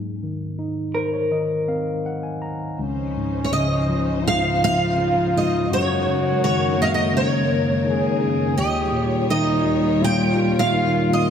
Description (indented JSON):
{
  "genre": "acoustic folk-pop ballad",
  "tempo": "83 BPM",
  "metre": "4/4",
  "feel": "straight",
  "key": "Db major",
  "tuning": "A4 = 440 Hz",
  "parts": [
    { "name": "overdriven tine electric piano", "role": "accompaniment", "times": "0.0-11.3 s", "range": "Db2 to Bb5", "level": "-23 LUFS", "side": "left 1 dB", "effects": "none" },
    { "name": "electric guitar through a small old amp", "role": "arpeggios", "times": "0.0-3.1 s", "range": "Ab4 to Bb4", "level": "-25 LUFS", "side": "left 2 dB", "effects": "tremolo" },
    { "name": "clear French horn", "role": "second line", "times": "2.8-11.3 s", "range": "Db4 to Ab4", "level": "-24 LUFS", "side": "left 1 dB", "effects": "none" },
    { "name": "warm studio string section", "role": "sustained chords", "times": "2.8-11.3 s", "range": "Db2 to Db5", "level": "-27 LUFS", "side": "left 1 dB", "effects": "none" },
    { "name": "picked steel-string acoustic guitar", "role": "melody", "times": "3.4-11.3 s", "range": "Db5 to G5", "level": "-22 LUFS", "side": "right 2 dB", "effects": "ensemble chorus, diffuse ambient delay" }
  ],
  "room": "wet plate reverb, RT60 3.3 s",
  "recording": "dreamy mix soaked in reverb",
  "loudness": "-18 LUFS",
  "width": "side -8 dB against mid",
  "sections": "0.0-2.8 A section; 2.8-11.3 B section",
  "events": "none",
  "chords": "0.0 Ab; 2.8 Dbmaj7; 5.7 Gb6; 8.6 Eb7"
}